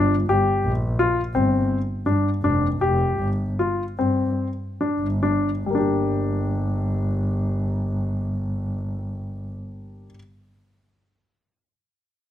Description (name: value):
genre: contemporary instrumental, contemporary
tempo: 135-171 BPM (eighths)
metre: 7/8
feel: straight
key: G minor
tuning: A4 = 440 Hz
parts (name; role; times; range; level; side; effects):
- warm baby grand piano; arpeggios; 0.0-10.2 s; G3 to G4; -22 LUFS; left 2 dB; none
- muted double bass; bass; 0.0-9.5 s; F1 to G2; -24 LUFS; equal; none
room: little or no reverb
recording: close, detailed microphones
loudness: -21 LUFS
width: side -11 dB against mid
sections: 0.0-5.7 A section; 5.7-8.8 B section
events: slowing down 0.3-5.7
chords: 0.0 G7(no3); 5.7 Gm